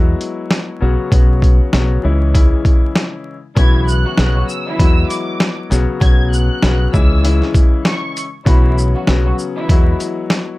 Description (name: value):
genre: hip hop, boom-bap hip-hop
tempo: 98 BPM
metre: 4/4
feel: swing 61% on 16ths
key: unclear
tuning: A4 = 440 Hz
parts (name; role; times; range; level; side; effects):
- clear concert grand piano; accompaniment; 0.0-10.6 s; C#3 to F#4; -21 LUFS; left 4 dB; high-pass filter, low-pass filter
- deep dub fingered electric bass; bass; 0.0-9.9 s; B1 to E2; -15 LUFS; equal; none
- boom bap sampler-style drum kit; drums; 0.2-10.5 s; hi-hat, kick drum, shaker, snare drum; -13 LUFS; equal; none
- warm studio violin section; melody; 3.6-8.1 s; C#6 to G#6; -24 LUFS; right 1 dB; high-pass filter, low-pass filter, slapback echo
- warm studio string section; stabs; 3.6-10.0 s; E3 to F#4; -25 LUFS; right 2 dB; high-pass filter, low-pass filter, slapback echo
room: light reverb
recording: dark, warm production, vinyl crackle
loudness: -12 LUFS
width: side -19 dB against mid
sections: 0.0-3.6 A section; 3.6-10.6 B section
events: none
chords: 0.0 Eadd9; 0.8 Bsus2; 2.0 C#m; 3.6 Bsus2; 4.8 Eadd9; 5.7 Bsus2; 6.9 C#m; 8.5 Bsus2; 9.7 Eadd9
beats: 0.50 | 1.12 1.73 2.34 2.95 | 3.57 4.18 4.79 5.40 | 6.01 6.63 7.24 7.85 | 8.46 9.08 9.69 10.30